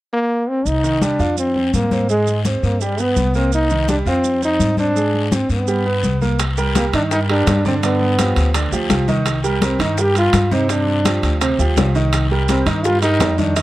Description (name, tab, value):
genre	latin, salsa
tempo	167 BPM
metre	4/4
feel	straight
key	C minor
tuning	A4 = 445 Hz
part	bright trombone	melody	0.1-13.6 s	G3 to G4	-19 LUFS	equal	none
part	upright bass	bass	0.7-13.6 s	C2 to Ab2	-20 LUFS	equal	none
part	congas	percussion	0.7-13.6 s	none	-23 LUFS	left 3 dB	none
part	guiro	percussion	0.7-13.6 s	none	-31 LUFS	left 9 dB	none
part	maracas	percussion	0.7-13.6 s	none	-31 LUFS	right 13 dB	none
part	bright grand piano	accompaniment	0.8-13.6 s	C3 to F5	-22 LUFS	right 3 dB	none
part	bongos	percussion	6.4-13.6 s	none	-26 LUFS	left 7 dB	none
part	timbales	percussion	6.4-13.6 s	none	-26 LUFS	right 5 dB	none
room	small room ambience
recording	dry, close 1970s-style studio recording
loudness	-15 LUFS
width	side -16 dB against mid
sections	0.7-6.4 A section; 6.4-13.6 B section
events	none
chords	0.0 N.C.; 0.7 Cm; 1.4 Fm; 2.1 Ab; 2.8 G; 3.5 Cm7; 4.2 Fm; 5.0 Ab; 5.7 G; 6.4 Cm7; 7.8 G7; 9.3 Cm7; 10.7 G7sus4; 12.1 Cm7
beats	0.30 | 0.66 1.02 1.38 1.74 | 2.09 2.45 2.81 3.17 | 3.53 3.89 4.25 4.60 | 4.96 5.32 5.68 6.04 | 6.40 6.75 7.11 7.47 | 7.83 8.19 8.55 8.90 | 9.26 9.62 9.98 10.34 | 10.70 11.05 11.41 11.77 | 12.13 12.49 12.85 13.21 | 13.56